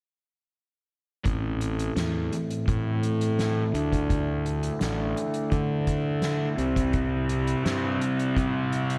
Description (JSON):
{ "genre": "psychedelic rock", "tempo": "84 BPM", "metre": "4/4", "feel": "straight", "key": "A minor", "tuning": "A4 = 439 Hz", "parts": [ { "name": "thick fuzz guitar", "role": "riff", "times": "1.2-9.0 s", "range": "A2 to D4", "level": "-30 LUFS", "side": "equal", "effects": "distortion, phaser, low-pass filter" }, { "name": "mellow tonewheel organ", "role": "sustained chords", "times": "1.3-9.0 s", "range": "C4 to E5", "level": "-35 LUFS", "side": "equal", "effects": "slow rotary speaker, low-pass filter" }, { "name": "fuzz fingered electric bass", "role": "bass", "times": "1.3-9.0 s", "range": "A1 to D3", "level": "-32 LUFS", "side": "equal", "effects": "overdrive" }, { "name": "soft-mallet drum kit", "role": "drums", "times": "1.3-9.0 s", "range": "hi-hat, kick drum, snare drum", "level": "-34 LUFS", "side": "equal", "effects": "none" } ], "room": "light reverb, small room reverb", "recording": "none", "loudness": "-27 LUFS", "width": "mono", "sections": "1.3-9.0 A section", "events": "filter sweep 1.3-9.0", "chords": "1.3 Am; 3.7 Dsus2; 6.6 C", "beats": "| 1.25 1.97 2.68 3.39 | 4.10 4.81 5.52 6.23 | 6.94 7.65 8.36" }